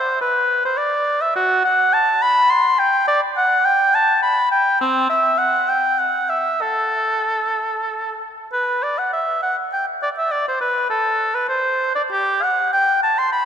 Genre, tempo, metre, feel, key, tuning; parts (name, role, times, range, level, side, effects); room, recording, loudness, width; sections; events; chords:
classical, baroque-style fantasia for unaccompanied oboe; 91-107 BPM; 3/4; rubato; G major; A4 = 440 Hz
clear oboe; solo; 0.0-13.5 s; C4 to C6; -16 LUFS; equal
wet church reverb, RT60 4.1 s; -16 LUFS; side -8 dB against mid
0.0-8.5 A section; 8.5-13.5 A section